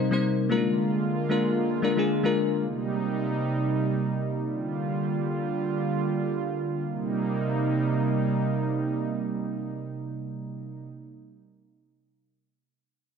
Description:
amapiano; 113 BPM; 4/4; swing 55% on 16ths; C minor; A4 = 440 Hz
bell-like FM electric piano; accompaniment; 0.0-2.6 s; G3 to C5; -24 LUFS; left 4 dB; chorus
warm analog pad; sustained chords; 0.0-10.9 s; C3 to F4; -26 LUFS; right 3 dB; chorus
light reverb, digital ambience; -25 LUFS; side -6 dB against mid
0.0-6.9 A section; 6.9-11.1 B section
0.5 Bb7; 2.6 Cm7; 4.5 Gm7; 6.9 Cm7

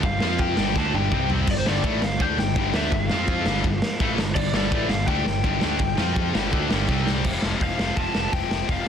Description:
punk rock; 166 BPM; 4/4; straight; A4 = 440 Hz
lead guitar through a small cranked amp; melody; 0.0-8.9 s; C5 to A5; -28 LUFS; left 2 dB; overdrive, digital delay
overdriven semi-hollow guitar; riff; 0.0-7.2 s; G2 to F4; -29 LUFS; right 10 dB
thick fuzz guitar; riff; 0.0-7.2 s; G2 to F4; -30 LUFS; equal; distortion
tight distorted guitar; riff; 0.0-8.9 s; F2 to F4; -29 LUFS; left 11 dB; distortion
picked electric bass; bass; 0.0-8.8 s; F1 to F2; -29 LUFS; equal
raw garage drum kit; drums; 0.0-8.8 s; crash cymbal, hi-hat, kick drum, ride cymbal, snare drum, toms; -25 LUFS; equal
little or no reverb; dense, heavily limited modern master; -20 LUFS; side -8 dB against mid
0.0-7.2 A section; 7.2-8.9 B section
drum fill 0.8-1.5, 6.9-7.2
0.2 F5; 0.6 G5; 1.1 C5; 1.5 G5; 3.1 F5; 3.5 G5; 6.0 F5; 6.3 G5; 6.9 C5; 7.2 F

